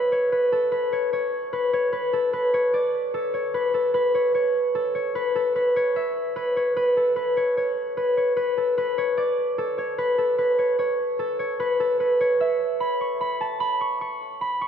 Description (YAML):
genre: hip hop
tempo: 149 BPM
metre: 4/4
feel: half-time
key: B minor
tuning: A4 = 439 Hz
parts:
  - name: concert harp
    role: solo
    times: 0.0-14.7 s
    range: A4 to C#6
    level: -21 LUFS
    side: equal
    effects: low-pass filter, tape echo
room: moderate plate reverb, RT60 3.4 s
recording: dreamy mix soaked in reverb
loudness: -21 LUFS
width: side -8 dB against mid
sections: 0.0-12.8 A section; 12.8-14.7 B section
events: none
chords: none